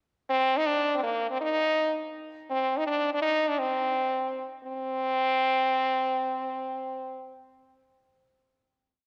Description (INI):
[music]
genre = medieval dance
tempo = 162-179 BPM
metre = 3/4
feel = straight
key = C minor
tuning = A4 = 440 Hz
[part]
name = stopped French horn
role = solo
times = 0.3-7.5 s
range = Bb3 to Eb4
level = -28 LUFS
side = equal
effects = none
[sound]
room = wet concert hall reverb, RT60 2.4 s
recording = worn, warbling old tape, cassette tape, warbly pitch drift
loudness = -28 LUFS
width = mono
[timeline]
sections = 0.3-4.7 A section; 4.7-6.7 final note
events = speeding up 0.3-6.7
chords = none